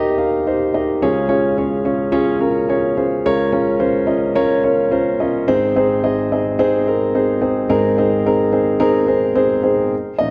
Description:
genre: pop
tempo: 108 BPM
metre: 4/4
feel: straight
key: unclear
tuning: A4 = 437 Hz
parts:
  - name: dark baby grand piano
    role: solo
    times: 0.0-10.3 s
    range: Ab1 to F5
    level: -17 LUFS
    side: equal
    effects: none
room: wet recital hall reverb, RT60 1.6 s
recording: none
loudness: -17 LUFS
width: mono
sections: 0.0-9.9 A section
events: none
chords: 0.0 Eb; 1.0 Db; 3.3 Bbm/Db; 5.5 Ab

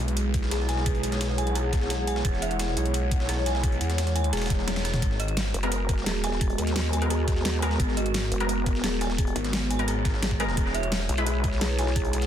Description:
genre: dark technical drum and bass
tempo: 173 BPM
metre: 4/4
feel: straight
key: unclear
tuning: A4 = 439 Hz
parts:
  - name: dark analog pad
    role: sustained chords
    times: 0.0-12.3 s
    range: G#3 to C#5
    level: -34 LUFS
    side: right 2 dB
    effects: chorus, sidechain pumping
  - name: snarling distorted saw bass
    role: bass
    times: 0.0-5.5, 7.8-11.1 s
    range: E1 to E2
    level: -28 LUFS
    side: equal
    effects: distortion, tube saturation
  - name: warbly tape-like pad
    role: texture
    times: 0.0-12.3 s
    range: B3 to F#5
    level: -34 LUFS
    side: left 1 dB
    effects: chorus, built-in reverb, sidechain pumping
  - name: dubstep drum kit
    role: drums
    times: 0.1-12.3 s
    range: hi-hat, snare drum, toms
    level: -32 LUFS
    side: equal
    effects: small room ambience
  - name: breakbeat sampler-style drum kit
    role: drums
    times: 0.2-12.3 s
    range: hi-hat, snare drum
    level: -37 LUFS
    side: left 1 dB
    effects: overdrive, high-pass filter on hats, small room ambience, high-pass filter on snare, high-pass filter on room
  - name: electronic kick drum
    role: drums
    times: 0.3-12.0 s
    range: none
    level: -27 LUFS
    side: equal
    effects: small room ambience
  - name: dark detuned synth bell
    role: arpeggios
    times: 0.5-12.1 s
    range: G#4 to G#5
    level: -34 LUFS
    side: right 2 dB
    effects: chorus, phaser, sidechain pumping, tape echo
  - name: swell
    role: sound effects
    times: 4.4-5.0 s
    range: none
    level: -36 LUFS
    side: left 4 dB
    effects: none
  - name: vowel-sweep wobble bass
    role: bass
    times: 5.5-12.3 s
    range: D#1 to D#2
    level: -28 LUFS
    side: equal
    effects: chorus
  - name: orchestra-hit-like synth stab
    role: stabs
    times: 5.6-12.3 s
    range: G#3 to B4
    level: -32 LUFS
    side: left 1 dB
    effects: built-in reverb, tape echo
room: light reverb, digital ambience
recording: dense, heavily limited modern master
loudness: -23 LUFS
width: side -10 dB against mid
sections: 0.0-12.3 A section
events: swell 4.4-5.0; drum fill 4.7-5.0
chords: 0.0 E; 5.0 G#madd9; 10.6 E

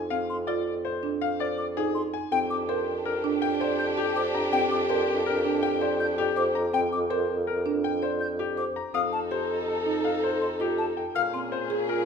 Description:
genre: classical, minimalist pattern music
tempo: 163 BPM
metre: 6/4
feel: straight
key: unclear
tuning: A4 = 440 Hz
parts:
  - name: bright grand piano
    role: melody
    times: 0.0-12.1 s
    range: G4 to Bb5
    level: -31 LUFS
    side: left 8 dB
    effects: none
  - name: dark bassoon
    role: bass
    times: 0.0-12.1 s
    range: F2 to Bb2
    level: -30 LUFS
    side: equal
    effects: none
  - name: marimba with medium mallets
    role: arpeggios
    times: 0.1-12.1 s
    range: C4 to D5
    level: -30 LUFS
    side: right 6 dB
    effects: none
  - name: mellow hollow silver concert flute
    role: arpeggios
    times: 0.3-11.4 s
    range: G5 to G6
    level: -31 LUFS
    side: left 4 dB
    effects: none
  - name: mellow clarinet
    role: second line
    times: 2.3-12.1 s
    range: G4 to A4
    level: -34 LUFS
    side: right 1 dB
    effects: none
  - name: warm studio string section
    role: sustained chords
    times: 2.3-12.1 s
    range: Db4 to A4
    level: -33 LUFS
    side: left 1 dB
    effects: none
room: moderate recital hall reverb, RT60 1.8 s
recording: minimal, uncompressed stereo recording, faint mains hum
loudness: -24 LUFS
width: side -6 dB against mid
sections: 0.0-11.2 A section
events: none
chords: 0.0 Fm; 2.3 Gm/F; 8.9 F7; 11.2 Bbm7

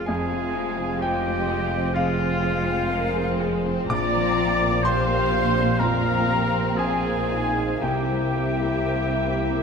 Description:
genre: cinematic, emotional film score for orchestra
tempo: 57-65 BPM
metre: 4/4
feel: rubato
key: F dorian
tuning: A4 = 440 Hz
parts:
  - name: muted studio violin section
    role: melody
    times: 0.0-9.6 s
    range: Ab3 to C4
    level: -32 LUFS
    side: left 3 dB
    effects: none
  - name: clear oboe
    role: second line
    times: 0.0-9.6 s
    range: F4 to D5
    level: -30 LUFS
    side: right 1 dB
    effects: none
  - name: flute section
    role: second line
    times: 0.0-9.6 s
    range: F5 to D6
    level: -31 LUFS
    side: left 3 dB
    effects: none
  - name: muted studio violin section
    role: second line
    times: 0.0-9.6 s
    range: C5 to Bb5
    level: -34 LUFS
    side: left 2 dB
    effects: none
  - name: muted studio viola section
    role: accompaniment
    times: 0.0-9.6 s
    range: F4 to D5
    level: -31 LUFS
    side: right 2 dB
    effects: none
  - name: warm baby grand piano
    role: accompaniment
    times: 0.0-9.6 s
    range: Bb1 to D6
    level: -29 LUFS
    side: equal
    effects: none
  - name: dark French horn section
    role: sustained chords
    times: 0.0-9.6 s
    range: Eb4 to Bb4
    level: -30 LUFS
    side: left 4 dB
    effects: none
  - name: concert harp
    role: arpeggios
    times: 0.0-9.6 s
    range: F2 to C6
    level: -33 LUFS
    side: left 8 dB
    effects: none
  - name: muted studio cello section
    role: bass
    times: 0.0-9.6 s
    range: F2 to C3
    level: -30 LUFS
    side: right 4 dB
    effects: none
  - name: muted studio double bass section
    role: bass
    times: 0.0-9.6 s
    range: F1 to C2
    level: -29 LUFS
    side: right 2 dB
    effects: none
room: moderate scoring stage reverb, RT60 1.7 s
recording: minimal, uncompressed stereo recording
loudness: -20 LUFS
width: side -6 dB against mid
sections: 0.0-9.6 A section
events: none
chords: 0.0 Fm; 3.9 Bbadd9; 7.8 C7

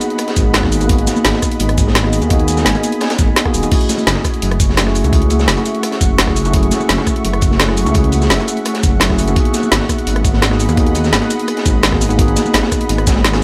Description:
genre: liquid drum and bass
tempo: 170 BPM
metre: 4/4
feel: straight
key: unclear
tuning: A4 = 440 Hz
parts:
  - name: mellow tine electric piano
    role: accompaniment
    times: 0.0-13.4 s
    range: A3 to G#4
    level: -21 LUFS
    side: equal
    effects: digital delay
  - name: shimmering ambient pad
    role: sustained chords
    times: 0.0-13.4 s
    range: A3 to C#6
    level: -27 LUFS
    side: equal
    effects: chorus, built-in reverb, sidechain pumping
  - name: crunchy breakbeat drum kit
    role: drums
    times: 0.0-13.4 s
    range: hi-hat, snare drum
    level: -26 LUFS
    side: equal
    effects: high-pass filter on hats, studio reverb, high-pass filter on snare, high-pass filter on room
  - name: drum and bass drum kit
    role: drums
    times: 0.0-13.4 s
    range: crash cymbal, hi-hat, rim click, shaker, snare drum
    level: -20 LUFS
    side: equal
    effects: overdrive, studio reverb
  - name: dark detuned saw bass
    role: bass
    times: 0.4-13.4 s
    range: D#1 to D#2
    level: -20 LUFS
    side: equal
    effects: none
  - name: electronic kick drum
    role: drums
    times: 0.4-13.1 s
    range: none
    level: -18 LUFS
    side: equal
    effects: studio reverb
  - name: bongos and congas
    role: percussion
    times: 0.8-13.2 s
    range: none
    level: -28 LUFS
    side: equal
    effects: none
room: light reverb, small room ambience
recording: none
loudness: -14 LUFS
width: mono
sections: 0.0-13.4 A section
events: none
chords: 0.0 G#m7; 3.7 F#m7; 9.4 G#m7

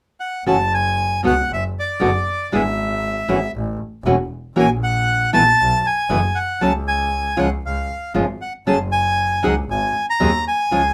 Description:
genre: tango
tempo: 117 BPM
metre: 4/4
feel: rubato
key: F# minor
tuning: A4 = 440 Hz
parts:
  - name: bandoneon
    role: melody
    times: 0.2-10.9 s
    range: D5 to A#5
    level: -21 LUFS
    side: equal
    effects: none
  - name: nylon-string guitar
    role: accompaniment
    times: 0.5-10.8 s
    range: B2 to A#4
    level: -20 LUFS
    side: equal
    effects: none
  - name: clear double bass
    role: bass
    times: 0.5-10.9 s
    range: E1 to D#2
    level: -26 LUFS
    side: equal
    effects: none
room: light reverb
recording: none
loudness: -19 LUFS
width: mono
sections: 0.5-10.9 A section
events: none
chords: 0.5 F#m; 1.5 Bm/F#; 2.5 E/G#; 3.5 A5; 4.6 F#7/A#; 5.6 B7sus4; 6.6 F#m/C#; 7.6 C#; 8.7 F#madd9; 9.7 G#5

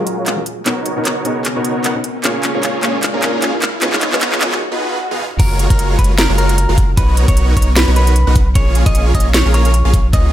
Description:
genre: future bass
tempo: 152 BPM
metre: 4/4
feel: swing 56% on 16ths, half-time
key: F# major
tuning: A4 = 441 Hz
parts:
  - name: felt-muted upright piano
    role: accompaniment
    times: 0.0-4.6 s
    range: A#2 to B4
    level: -23 LUFS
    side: left 2 dB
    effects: sidechain pumping, ping-pong delay
  - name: airy breathy pad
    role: sustained chords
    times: 0.0-10.3 s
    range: A#2 to B4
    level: -30 LUFS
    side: equal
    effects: chorus, sidechain pumping
  - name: supersaw chords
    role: riff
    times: 0.0-10.3 s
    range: G#3 to F#5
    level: -20 LUFS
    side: right 1 dB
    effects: sidechain pumping, low-pass filter, ping-pong delay
  - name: riser and swell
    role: sound effects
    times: 0.6-5.4 s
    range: none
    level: -27 LUFS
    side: equal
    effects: none
  - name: trap drum kit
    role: drums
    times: 0.1-10.2 s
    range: crash cymbal, handclaps, hi-hat, snare drum, toms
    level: -18 LUFS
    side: equal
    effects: small room reverb
  - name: clean electric guitar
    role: melody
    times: 5.4-10.3 s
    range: A#4 to D#5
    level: -22 LUFS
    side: equal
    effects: sidechain pumping, ping-pong delay
  - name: saturated sub bass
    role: bass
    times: 5.4-10.3 s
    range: F#1 to C#2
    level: -14 LUFS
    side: equal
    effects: sidechain pumping
  - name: electronic kick drum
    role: drums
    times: 5.4-10.2 s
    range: none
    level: -14 LUFS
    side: equal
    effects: small room reverb
room: light reverb, digital ambience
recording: high-pass filter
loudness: -12 LUFS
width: side -12 dB against mid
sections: 0.0-5.4 A section; 5.4-10.3 B section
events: build-up 0.0-5.4; drum fill 0.0-4.6, 5.1; filter sweep on supersaw synth 0.0-5.4; filter sweep on analog synth pad 0.0-5.4; break 4.6-5.4; swell 4.6-5.4; drop 5.4-10.3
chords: 0.0 F#maj9; 0.7 Bmaj9; 2.2 A#m7; 3.8 C#9; 5.4 F#maj9; 7.0 Bmaj9; 8.6 A#m7

